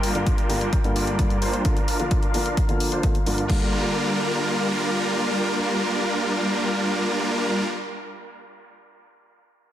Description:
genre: EDM, festival progressive house.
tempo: 130 BPM.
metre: 4/4.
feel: straight.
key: G minor.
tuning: A4 = 442 Hz.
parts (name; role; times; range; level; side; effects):
dark chamber string section; sustained chords; 0.0-7.6 s; G3 to G5; -32 LUFS; left 1 dB; sidechain pumping, low-pass filter.
supersaw chords; riff; 0.0-7.6 s; G3 to D5; -24 LUFS; equal; cassette tape, sidechain pumping, low-pass filter, dub echo.
house drum kit; drums; 0.0-3.6 s; crash cymbal, hi-hat; -33 LUFS; left 2 dB; studio ambience.
dark concert grand piano; accompaniment; 0.1-7.7 s; G2 to F4; -29 LUFS; left 1 dB; sidechain pumping, dub echo.
electronic kick drum; drums; 0.3-3.6 s; none; -23 LUFS; equal; studio ambience.
room: moderate lush hall reverb, RT60 1.8 s, studio reverb.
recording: dense, heavily limited modern master.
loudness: -20 LUFS.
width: side -11 dB against mid.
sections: 0.0-3.5 A section; 3.5-7.2 B section.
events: filter sweep on supersaw synth 0.0-3.5; filter sweep on string section 0.0-3.5.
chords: 0.0 Gm7.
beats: 0.27 0.73 1.19 | 1.65 2.11 2.57 3.03 | 3.50 3.96 4.42 4.88 | 5.34 5.80 6.26 6.73.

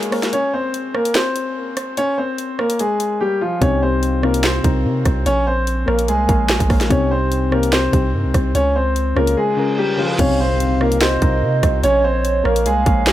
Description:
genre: hip hop, drill.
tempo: 146 BPM.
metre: 4/4.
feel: half-time.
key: C phrygian.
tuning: A4 = 440 Hz.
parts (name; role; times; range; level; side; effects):
clear baby grand piano; melody; 0.0-13.1 s; F3 to Db5; -19 LUFS; left 1 dB; digital delay.
soft electric-piano-like synth keys; accompaniment; 0.0-0.4, 3.6-13.1 s; C3 to F5; -22 LUFS; left 3 dB; chorus.
drill drum kit; drums; 0.0-13.1 s; crash cymbal, handclaps, hi-hat, kick drum, rim click, snare drum; -20 LUFS; right 1 dB; none.
long sustained 808-style bass; bass; 3.6-13.1 s; Bb1 to C3; -20 LUFS; right 1 dB; none.
reverse cymbal and impact; sound effects; 9.5-11.8 s; none; -29 LUFS; right 1 dB; none.
hollow clarinet-like synth lead; second line; 10.2-13.1 s; Db5 to F5; -22 LUFS; right 6 dB; chorus, digital delay.
room: digital ambience.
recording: none.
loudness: -15 LUFS.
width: side -13 dB against mid.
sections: 0.0-10.2 A section; 10.2-13.1 B section.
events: break 0.0-3.6; silent gap 3.2-3.6; reverse cymbal 9.5-10.2; impact 10.2-11.8.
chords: 0.3 Bbmadd9; 2.0 Db; 3.6 Cm; 5.3 Bbm; 6.9 Cm; 8.5 Db; 10.2 Cm; 11.8 Bbm.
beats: | 0.33 0.74 1.15 1.56 | 1.97 2.38 2.79 3.21 | 3.62 4.03 4.44 4.85 | 5.26 5.67 6.08 6.49 | 6.90 7.32 7.73 8.14 | 8.55 8.96 9.37 9.78 | 10.19 10.60 11.01 11.43 | 11.84 12.25 12.66 13.07.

